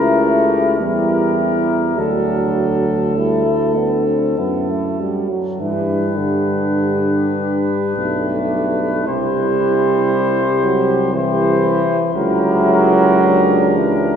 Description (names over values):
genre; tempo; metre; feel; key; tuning
classical, hymn-like piece for brass band; 47-60 BPM; 3/4; rubato; G major; A4 = 445 Hz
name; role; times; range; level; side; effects
mellow trumpet section; melody; 0.0-14.2 s; A4 to C5; -23 LUFS; left 5 dB; none
warm French horn section; second line; 0.0-14.2 s; G4 to A4; -23 LUFS; right 2 dB; none
clear euphonium; accompaniment; 0.0-14.2 s; D4 to F#4; -22 LUFS; left 1 dB; none
warm trombone; accompaniment; 0.0-14.2 s; D3 to C4; -19 LUFS; right 2 dB; none
warm tuba; bass; 0.0-14.2 s; B1 to G2; -19 LUFS; equal; none
room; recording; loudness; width
wet cathedral reverb, RT60 5.3 s; heard from further back in the room; -14 LUFS; side -8 dB against mid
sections
0.0-14.2 A section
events
none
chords
0.0 C#dim7; 2.0 D; 5.6 G; 9.1 C; 12.1 C#dim7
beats
0.80 | 1.97 3.16 4.38 | 5.60 6.74 7.97 | 9.06 10.11 11.12 | 12.15 13.20